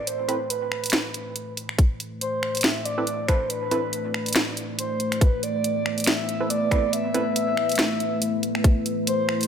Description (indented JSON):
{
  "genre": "deep dubstep",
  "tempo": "140 BPM",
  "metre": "4/4",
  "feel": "swing 56% on 16ths, half-time",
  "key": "A minor",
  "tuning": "A4 = 441 Hz",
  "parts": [
    { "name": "breathy flute-like synth lead", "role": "melody", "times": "0.0-9.5 s", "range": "B4 to E5", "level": "-27 LUFS", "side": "equal", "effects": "lush chorus, dub echo" },
    { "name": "deep dark ambient pad", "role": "sustained chords", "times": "0.0-9.5 s", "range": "A3 to D5", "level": "-29 LUFS", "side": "equal", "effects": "chorus, built-in reverb" },
    { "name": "garage drum kit", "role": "drums", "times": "0.1-9.5 s", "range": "finger snaps, hi-hat, snare drum", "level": "-25 LUFS", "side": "equal", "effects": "none" },
    { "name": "filtered dub chord stab", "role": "stabs", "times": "0.3-0.4, 3.0-3.8, 6.4-7.2 s", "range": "C4 to B4", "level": "-30 LUFS", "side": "right 2 dB", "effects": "chorus, cassette tape, dub echo" },
    { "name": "electronic kick drum", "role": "drums", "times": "1.8-8.7 s", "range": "none", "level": "-18 LUFS", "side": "equal", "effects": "none" }
  ],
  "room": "moderate echo chamber reverb, RT60 1.4 s",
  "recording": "none",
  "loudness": "-22 LUFS",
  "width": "side -8 dB against mid",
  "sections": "0.0-9.5 A section",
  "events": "build-up 0.0-9.5; filter sweep on ambient pad 0.0-9.5",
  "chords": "0.0 Amadd9",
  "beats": "| 0.07 0.50 0.93 1.36 | 1.79 2.21 2.64 3.07 | 3.50 3.93 4.36 4.79 | 5.21 5.64 6.07 6.50 | 6.93 7.36 7.79 8.21 | 8.64 9.07"
}